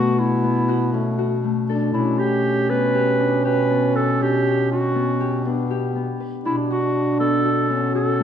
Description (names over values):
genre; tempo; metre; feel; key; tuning
contemporary instrumental, chamber music in an uneven meter; 240 BPM (eighths); 9/8; straight; unclear; A4 = 441 Hz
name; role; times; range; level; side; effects
warm clarinet; melody; 0.0-8.2 s; E4 to B4; -22 LUFS; right 2 dB; none
mellow French horn; second line; 0.0-8.2 s; A3 to D4; -24 LUFS; right 1 dB; none
Celtic harp; arpeggios; 0.0-8.2 s; A3 to B4; -25 LUFS; left 7 dB; none
warm bass clarinet; bass; 0.0-8.2 s; B2; -25 LUFS; equal; none
room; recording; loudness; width
moderate recital hall reverb, RT60 1.4 s; none; -18 LUFS; side -8 dB against mid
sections
0.0-8.2 A section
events
none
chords
0.0 Bm9; 1.9 Gmaj9#11/B; 6.4 Bm9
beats
0.18 0.43 0.69 0.94 1.19 1.44 1.69 | 1.94 2.19 2.44 2.69 2.94 3.19 3.44 3.69 3.94 | 4.19 4.45 4.70 4.95 5.20 5.45 5.70 5.95 6.20 | 6.45 6.70 6.95 7.20 7.45 7.70 7.95 8.20